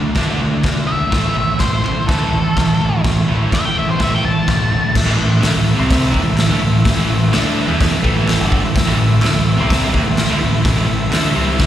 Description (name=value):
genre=garage rock duo or trio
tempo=126 BPM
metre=4/4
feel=straight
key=A major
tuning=A4 = 438 Hz
part: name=overdriven combo organ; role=sustained chords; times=0.0-11.7 s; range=E4 to E5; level=-28 LUFS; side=left 1 dB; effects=none
part: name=thick fuzz guitar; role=riff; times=0.0-11.7 s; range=G2 to E4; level=-18 LUFS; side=right 1 dB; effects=distortion, slapback echo
part: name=growling picked electric bass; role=bass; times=0.0-11.7 s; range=G1 to E2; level=-19 LUFS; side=equal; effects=overdrive
part: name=raw garage drum kit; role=drums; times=0.1-11.7 s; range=crash cymbal, hi-hat, kick drum, snare drum, toms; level=-18 LUFS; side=equal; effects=none
part: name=group handclap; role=percussion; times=0.6-11.2 s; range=none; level=-28 LUFS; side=left 2 dB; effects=none
part: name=octave-fuzz lead guitar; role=melody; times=0.9-4.9 s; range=A4 to A5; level=-20 LUFS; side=left 1 dB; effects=distortion, slapback echo
room=little or no reverb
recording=live gig heard through the venue's PA, recital hall reverb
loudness=-13 LUFS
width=side -11 dB against mid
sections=0.0-5.0 A section; 5.0-11.7 B section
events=none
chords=0.0 D; 1.1 A; 5.0 A5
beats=0.16 0.64 | 1.12 1.60 2.08 2.56 | 3.04 3.52 4.00 4.48 | 4.95 5.43 5.91 6.38 | 6.86 7.33 7.80 8.28 | 8.75 9.22 9.70 10.17 | 10.64 11.11 11.59